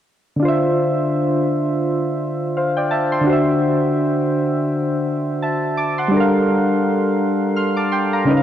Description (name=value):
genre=hip hop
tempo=84 BPM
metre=4/4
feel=swing 58% on 16ths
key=D minor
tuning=A4 = 441 Hz
part: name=soft electric-piano-like synth keys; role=accompaniment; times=0.4-8.4 s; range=C#3 to F6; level=-16 LUFS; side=equal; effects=chorus, cassette tape
room=moderate plate reverb, RT60 3.5 s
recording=none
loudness=-16 LUFS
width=side -10 dB against mid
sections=0.4-8.4 A section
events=none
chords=0.4 Dm7; 3.3 D7; 6.1 Gm7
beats=| 0.42 1.13 1.85 2.56 | 3.28 3.99 4.71 5.42 | 6.13 6.85 7.56 8.28